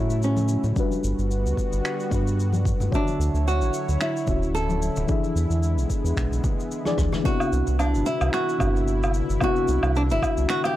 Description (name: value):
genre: sunset chillout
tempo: 111 BPM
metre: 4/4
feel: swing 55% on 16ths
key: unclear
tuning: A4 = 439 Hz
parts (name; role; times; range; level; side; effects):
- flamenco guitar; melody; 0.0-10.8 s; C#4 to A4; -27 LUFS; right 2 dB; tape echo
- mellow FM electric piano; accompaniment; 0.0-10.8 s; C3 to E5; -28 LUFS; left 3 dB; chorus, auto-pan, tape echo
- lush unison pad; sustained chords; 0.0-10.8 s; C#3 to C#5; -33 LUFS; equal; chorus
- round analog bass; bass; 0.0-10.5 s; D1 to A2; -23 LUFS; equal; none
- cabasa, finger snaps, rim click and woodblock; drums; 0.1-10.7 s; none; -32 LUFS; right 1 dB; none
- congas; percussion; 0.4-7.2 s; none; -35 LUFS; left 3 dB; none
- electronic kick drum; drums; 0.8-10.3 s; none; -26 LUFS; equal; none
room: studio ambience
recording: dry, gritty hardware recording, transformer saturation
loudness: -21 LUFS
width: side -14 dB against mid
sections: 0.0-7.3 A section; 7.3-10.8 B section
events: drum fill 6.8-7.3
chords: 0.0 A6; 0.8 Gmaj7; 2.9 Dmaj9; 5.1 E7; 7.3 Cmaj9#11